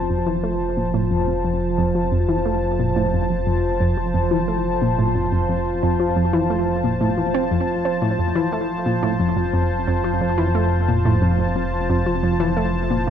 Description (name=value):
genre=ambient, sequencer-driven space music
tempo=89 BPM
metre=4/4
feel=straight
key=F major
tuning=A4 = 440 Hz
part: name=sweeping resonant pad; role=sustained chords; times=0.0-13.1 s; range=F3 to A5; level=-22 LUFS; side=equal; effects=chorus
part: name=fat analog bass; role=bass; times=0.0-13.1 s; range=F1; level=-26 LUFS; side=equal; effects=none
part: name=analog pluck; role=riff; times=0.1-13.1 s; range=F2 to C4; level=-21 LUFS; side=equal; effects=chorus, analog delay
room=moderate plate reverb, RT60 3.2 s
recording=none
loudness=-18 LUFS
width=side -9 dB against mid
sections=0.0-13.1 A section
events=none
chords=0.0 F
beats=| 0.10 0.77 1.44 2.12 | 2.79 3.47 4.14 4.82 | 5.49 6.16 6.84 7.51 | 8.19 8.86 9.53 10.21 | 10.88 11.56 12.23 12.90